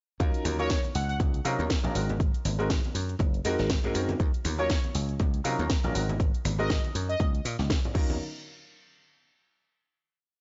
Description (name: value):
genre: filtered disco house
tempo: 120 BPM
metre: 4/4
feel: swing 57% on 16ths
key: Eb dorian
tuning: A4 = 442 Hz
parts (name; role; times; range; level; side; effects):
- clear baby grand piano; accompaniment; 0.2-8.1 s; Gb3 to Bb4; -34 LUFS; equal; phaser, vintage 12-bit sampler grit, sidechain pumping
- dry thumbed slap bass; bass; 0.2-8.2 s; Gb1 to C3; -33 LUFS; equal; sidechain pumping
- electronic kick drum; drums; 0.2-8.1 s; none; -30 LUFS; equal; none
- house drum kit; drums; 0.2-8.1 s; crash cymbal, finger snaps, hi-hat, shaker, snare drum; -38 LUFS; equal; sidechain pumping on hats, sidechain pumping on perc, sidechain pumping on cymbals
- egg shaker and congas; percussion; 0.2-8.2 s; none; -42 LUFS; equal; none
- analog synth brass; melody; 0.6-1.2, 4.6-7.3 s; Db5 to Gb5; -36 LUFS; equal; chorus, vintage 12-bit sampler grit, sidechain pumping
room: little or no reverb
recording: dry, gritty hardware recording, cassette tape, nothing above 7.7 kHz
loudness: -28 LUFS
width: mono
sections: 0.2-8.2 drop; 8.2-10.2 final hit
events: drop 0.2-8.2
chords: 0.2 Ebm7; 1.9 Ab7; 4.2 Ebm7; 6.0 Ab7; 7.2 Bbm/Db; 8.0 Ebm7; 8.2 N.C.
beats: | 0.20 0.70 1.20 1.70 | 2.20 2.70 3.20 3.70 | 4.20 4.70 5.20 5.70 | 6.20 6.70 7.20 7.70